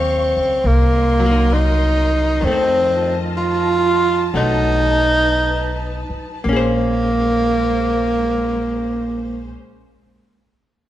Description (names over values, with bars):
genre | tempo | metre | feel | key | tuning
jazz ballad | 53-70 BPM | 4/4 | swing 67% on 8ths | Bb minor | A4 = 440 Hz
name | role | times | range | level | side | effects
warm tenor saxophone | melody | 0.0-9.5 s | Bb3 to F4 | -17 LUFS | right 1 dB | none
archtop guitar, miked and amplified | accompaniment | 0.0-9.6 s | Eb3 to C5 | -25 LUFS | left 3 dB | none
warm symphonic string section | sustained chords | 0.0-9.5 s | Ab3 to Db6 | -29 LUFS | left 2 dB | none
upright bass | bass | 0.0-9.5 s | Bb1 to F2 | -21 LUFS | equal | none
room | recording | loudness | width
moderate recital hall reverb, RT60 1.7 s | recorded in a church or concert hall, lossy compression artefacts | -15 LUFS | side -12 dB against mid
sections
0.0-6.5 A section; 6.5-10.9 B section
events
slowing down 0.0-6.5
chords
0.0 Ebm9; 0.6 Cm7b5; 2.4 F7; 4.3 B7; 6.5 Bbm9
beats
0.64 1.52 | 2.42 3.35 4.33 5.37 | 6.46 7.59 8.71